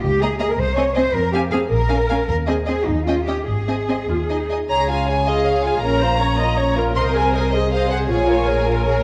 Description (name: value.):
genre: quick classical-period movement for string orchestra.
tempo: 106 BPM (dotted quarters).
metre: 6/8.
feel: rubato.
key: Ab major, Db major from 4.7 s.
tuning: A4 = 440 Hz.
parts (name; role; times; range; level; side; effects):
dark symphonic double bass section; bass; 0.0-9.0 s; Ab1 to F2; -25 LUFS; equal; none.
warm symphonic cello section; bass; 0.0-9.0 s; Bb2 to Db5; -25 LUFS; equal; none.
warm symphonic violin section; melody; 0.2-9.0 s; Eb5 to C6; -27 LUFS; equal; none.
rich symphonic violin section; second line; 0.2-9.0 s; Db4 to F5; -26 LUFS; equal; none.
warm studio viola section; accompaniment; 0.2-9.0 s; Bb3 to Eb5; -26 LUFS; equal; none.
room: moderate scoring stage reverb, RT60 1.7 s.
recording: dark, warm production.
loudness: -19 LUFS.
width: mono.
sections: 0.0-4.7 A section; 4.7-9.0 B section.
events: none.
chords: 0.0 Eb7/Db; 0.6 Ab/C; 1.1 Fm; 1.7 Bbm7; 2.3 Ab/Eb; 2.9 Eb7; 3.5 Ab5; 4.7 Db; 5.8 Bbm; 7.0 Ab/C; 8.1 Bbm7.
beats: | 0.03 0.59 | 1.15 1.71 | 2.28 2.86 | 3.47 4.08 | 4.68 5.25 | 5.82 6.39 | 6.95 7.52 | 8.08 8.64.